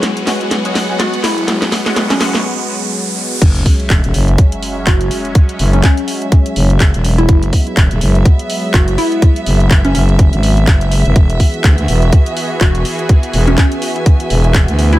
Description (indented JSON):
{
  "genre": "bass house",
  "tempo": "124 BPM",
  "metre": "4/4",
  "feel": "swing 57% on 16ths",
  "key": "unclear",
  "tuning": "A4 = 440 Hz",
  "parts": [
    { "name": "sweeping resonant pad", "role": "sustained chords", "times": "0.0-15.0 s", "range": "E3 to G#4", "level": "-22 LUFS", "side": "equal", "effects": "chorus, sidechain pumping" },
    { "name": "band-passed chord stab", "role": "stabs", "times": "0.0-2.4 s", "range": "G#3 to F#4", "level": "-23 LUFS", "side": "left 2 dB", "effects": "phaser, analog chorus, sidechain pumping, tape echo" },
    { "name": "garage drum kit", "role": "drums", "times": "0.0-15.0 s", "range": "crash cymbal, handclaps, hi-hat, snare drum", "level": "-19 LUFS", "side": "equal", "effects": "none" },
    { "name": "riser and sub drop", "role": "sound effects", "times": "0.0-5.4 s", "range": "none", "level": "-22 LUFS", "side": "right 1 dB", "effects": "none" },
    { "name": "rich chamber string section", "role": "texture", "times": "0.0-15.0 s", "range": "F#4 to G#5", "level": "-24 LUFS", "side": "right 2 dB", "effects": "sidechain pumping" },
    { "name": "hollow square pluck", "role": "melody", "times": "1.0-15.0 s", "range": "C#4 to F#4", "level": "-20 LUFS", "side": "equal", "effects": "wide subtle chorus, tape echo" },
    { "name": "growling FM bass", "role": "bass", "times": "1.2-15.0 s", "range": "E1 to D2", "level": "-13 LUFS", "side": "equal", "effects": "overdrive, sidechain pumping, high-pass filter" },
    { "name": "electronic kick drum", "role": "drums", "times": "3.4-14.7 s", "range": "none", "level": "-9 LUFS", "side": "equal", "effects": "none" }
  ],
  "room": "little or no reverb",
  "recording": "none",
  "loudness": "-10 LUFS",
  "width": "side -16 dB against mid",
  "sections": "0.0-3.4 A section; 3.4-15.0 B section",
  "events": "build-up 0.0-3.4; drum fill 0.0-2.4; riser 0.0-3.4; filter sweep on synth stab 0.0-3.4; break 2.4-3.4; drop 3.4-15.0; impact 3.4-5.4",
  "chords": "0.0 F#sus2; 11.2 Eadd9",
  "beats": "0.03 0.51 1.00 | 1.48 1.96 2.45 2.93 | 3.42 3.90 4.38 4.87 | 5.35 5.83 6.32 6.80 | 7.29 7.77 8.25 8.74 | 9.22 9.71 10.19 10.67 | 11.16 11.64 12.12 12.61 | 13.09 13.58 14.06 14.54"
}